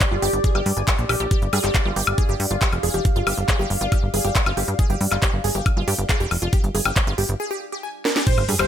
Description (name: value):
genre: psychedelic trance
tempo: 138 BPM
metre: 4/4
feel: straight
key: unclear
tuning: A4 = 440 Hz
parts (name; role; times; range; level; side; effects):
- drum and bass drum kit; drums; 0.0-8.7 s; crash cymbal, handclaps, hi-hat, snare drum, woodblock; -24 LUFS; left 1 dB; none
- electronic kick drum; drums; 0.0-8.4 s; none; -20 LUFS; equal; none
- deep dark ambient pad; texture; 0.0-7.4 s; G4 to G5; -29 LUFS; left 1 dB; chorus, built-in reverb, sidechain pumping
- wide unison pluck; riff; 0.1-8.6 s; F4 to Ab5; -27 LUFS; right 1 dB; auto-pan, sidechain pumping, digital delay
- plucky analog bass; bass; 0.1-8.7 s; F1 to G2; -24 LUFS; equal; none
- wide unison lead; melody; 8.3-8.7 s; C5; -24 LUFS; right 3 dB; phaser, sidechain pumping
- sub drop; sound effects; 8.3-8.7 s; none; -26 LUFS; equal; none
room: light reverb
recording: none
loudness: -18 LUFS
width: side -10 dB against mid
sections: 0.0-8.3 A section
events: break 7.4-8.3; drum fill 8.1; impact 8.3-8.7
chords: 0.0 G5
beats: 0.01 0.44 0.88 | 1.31 1.75 2.18 2.62 | 3.05 3.48 3.92 4.36 | 4.79 5.22 5.66 6.09 | 6.53 6.96 7.40 7.83 | 8.27